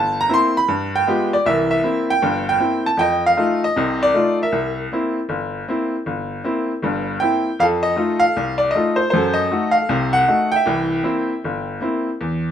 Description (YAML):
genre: solo jazz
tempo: 156 BPM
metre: 4/4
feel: swing 65% on 8ths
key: C mixolydian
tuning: A4 = 438 Hz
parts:
  - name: bright upright piano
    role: solo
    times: 0.0-12.5 s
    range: G1 to C6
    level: -17 LUFS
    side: equal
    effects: none
room: light reverb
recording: minimal, uncompressed stereo recording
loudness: -17 LUFS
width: side -9 dB against mid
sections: 0.0-1.5 A section; 1.5-12.5 B section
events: upright piano solo 0.0-1.5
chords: 0.0 C7; 0.7 G7b9; 1.5 C7; 3.0 F7; 4.5 C7; 7.6 F7; 9.1 F#dim7; 10.7 C7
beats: 0.31 0.69 1.07 | 1.46 1.84 2.22 2.61 | 2.99 3.37 3.76 4.14 | 4.52 4.91 5.29 5.67 | 6.06 6.44 6.82 7.21 | 7.59 7.97 8.36 8.74 | 9.13 9.51 9.89 10.28 | 10.66 11.05 11.43 11.81 | 12.20